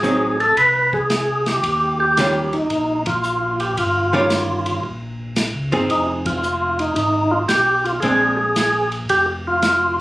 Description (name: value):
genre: soul jazz organ trio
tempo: 113 BPM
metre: 4/4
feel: swing 68% on 8ths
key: Eb mixolydian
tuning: A4 = 440 Hz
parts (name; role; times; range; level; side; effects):
- percussive tonewheel organ; melody; 0.0-10.0 s; Eb4 to Cb5; -17 LUFS; equal; slow rotary speaker, overdrive, chorus vibrato
- archtop guitar, miked and amplified; accompaniment; 0.0-8.4 s; Eb3 to Ab4; -20 LUFS; right 1 dB; none
- mellow tonewheel organ; bass; 0.0-10.0 s; F1 to Eb2; -27 LUFS; equal; overdrive, slow rotary speaker
- warm soul drum kit; drums; 0.0-9.8 s; hi-hat, kick drum, ride cymbal, snare drum; -26 LUFS; equal; none
room: wet small room reverb, RT60 0.5 s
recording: recorded on a phone in the room, studio ambience, compression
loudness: -16 LUFS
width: side -18 dB against mid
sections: 0.0-10.0 A section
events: band accent 3.0, 6.2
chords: 0.0 Adim7; 1.6 Eb9; 5.9 Fm7; 8.0 Bb9